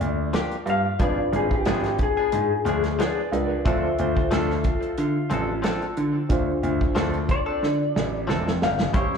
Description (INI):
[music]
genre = straight-eighth soul blues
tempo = 91 BPM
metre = 4/4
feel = swing 54% on 16ths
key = D minor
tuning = A4 = 440 Hz
[part]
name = electric guitar through a small old amp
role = melody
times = 0.0-3.3, 7.3-9.2 s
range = G4 to F5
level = -26 LUFS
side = left 4 dB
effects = tremolo, slapback echo
[part]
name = reed electric piano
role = accompaniment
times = 0.0-9.2 s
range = Bb3 to E5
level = -30 LUFS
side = right 1 dB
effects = overdrive, fast tremolo, slapback echo
[part]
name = warm concert grand piano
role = bass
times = 0.0-9.1 s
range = E1 to D3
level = -25 LUFS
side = equal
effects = none
[part]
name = warm soul drum kit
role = drums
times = 0.0-9.2 s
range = hi-hat, kick drum, snare drum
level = -26 LUFS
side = right 1 dB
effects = none
[part]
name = direct-recorded clean electric guitar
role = stabs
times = 0.3-9.2 s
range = F3 to B#4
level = -31 LUFS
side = left 4 dB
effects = slapback echo, tape echo
[part]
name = clean lap steel guitar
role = second line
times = 3.0-6.9 s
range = F4 to D5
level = -32 LUFS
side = right 2 dB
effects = slapback echo
[sound]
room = light reverb, small room ambience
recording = live gig heard through the venue's PA, club reverb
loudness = -21 LUFS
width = side -6 dB against mid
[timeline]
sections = 0.0-9.2 A section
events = drum fill 7.6-8.9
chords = 0.0 Gm7; 1.0 G#dim7; 3.7 Dm7